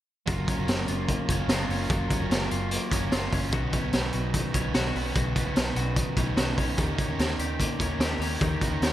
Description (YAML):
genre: jangly indie pop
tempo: 148 BPM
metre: 4/4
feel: straight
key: F# major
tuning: A4 = 440 Hz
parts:
  - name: raw garage guitar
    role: accompaniment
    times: 0.3-8.9 s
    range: B2 to B4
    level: -33 LUFS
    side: right 7 dB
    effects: overdrive
  - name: twelve-string electric guitar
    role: arpeggios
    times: 0.3-8.9 s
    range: B2 to G4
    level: -31 LUFS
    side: left 5 dB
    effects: digital delay
  - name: vintage muted fingered electric bass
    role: bass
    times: 0.3-8.9 s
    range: F#1 to D#2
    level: -32 LUFS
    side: equal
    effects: none
  - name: raw garage drum kit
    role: drums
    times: 0.3-8.9 s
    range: hi-hat, kick drum, snare drum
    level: -27 LUFS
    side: equal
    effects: none
room: light reverb, small room ambience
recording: bright 1980s-style digital production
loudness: -24 LUFS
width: side -13 dB against mid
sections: 0.3-8.9 A section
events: none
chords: 0.3 F#maj7; 3.5 Badd9; 6.8 D#7